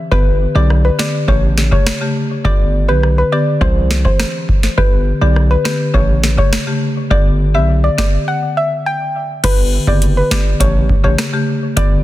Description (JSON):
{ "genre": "dancehall", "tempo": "103 BPM", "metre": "4/4", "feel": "straight", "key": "G major", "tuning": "A4 = 444 Hz", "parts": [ { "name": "soft round pluck", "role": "melody", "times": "0.1-11.9 s", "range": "B4 to G5", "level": "-19 LUFS", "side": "left 1 dB", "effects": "chorus, ping-pong delay" }, { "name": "buzzing marimba with hard mallets", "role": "accompaniment", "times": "0.1-12.0 s", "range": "C#3 to G4", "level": "-19 LUFS", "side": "left 2 dB", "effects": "sidechain pumping" }, { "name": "hard-hitting 808-style bass", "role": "bass", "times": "0.1-12.0 s", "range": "F#1 to C2", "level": "-14 LUFS", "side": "equal", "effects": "none" }, { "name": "booming analog drum machine", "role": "drums", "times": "0.1-12.0 s", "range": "crash cymbal, hi-hat, kick drum, rim click, snare drum", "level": "-16 LUFS", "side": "equal", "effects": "soft clipping on snare" } ], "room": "digital ambience", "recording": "dense, heavily limited modern master", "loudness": "-12 LUFS", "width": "side -15 dB against mid", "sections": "0.0-9.4 A section; 9.4-12.0 B section", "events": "break 8.3-9.4", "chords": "0.1 G; 1.3 A7; 2.4 G; 3.6 C; 4.8 G; 5.9 A7; 7.1 G; 8.3 N.C.; 9.4 G; 10.6 A7", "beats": "| 0.12 0.70 1.28 1.87 | 2.45 3.03 3.61 4.20 | 4.78 5.36 5.94 6.53 | 7.11 7.69 8.27 8.86 | 9.44 10.02 10.60 11.19 | 11.77" }